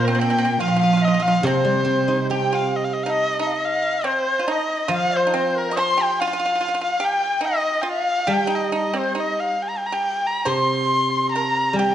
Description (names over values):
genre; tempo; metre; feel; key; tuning
chinese traditional, Chinese chamber ensemble; 70 BPM; 2/4; rubato; C yu mode; A4 = 445 Hz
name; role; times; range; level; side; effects
dark erhu; melody; 0.0-11.9 s; Bb4 to C6; -22 LUFS; equal; none
bright large dizi; second line; 0.0-11.9 s; Bb4 to Eb6; -25 LUFS; left 5 dB; none
pipa; second line; 0.0-11.9 s; C4 to Eb5; -27 LUFS; right 3 dB; none
rich cello; second line; 0.0-2.7 s; Bb2 to F3; -22 LUFS; right 3 dB; none
guzheng; accompaniment; 0.0-11.9 s; Bb2 to G4; -25 LUFS; right 1 dB; none
room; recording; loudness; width
wet recital hall reverb, RT60 1.4 s; nothing above 10.3 kHz; -18 LUFS; side -10 dB against mid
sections
0.0-3.2 A section; 3.2-11.9 B section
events
none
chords
none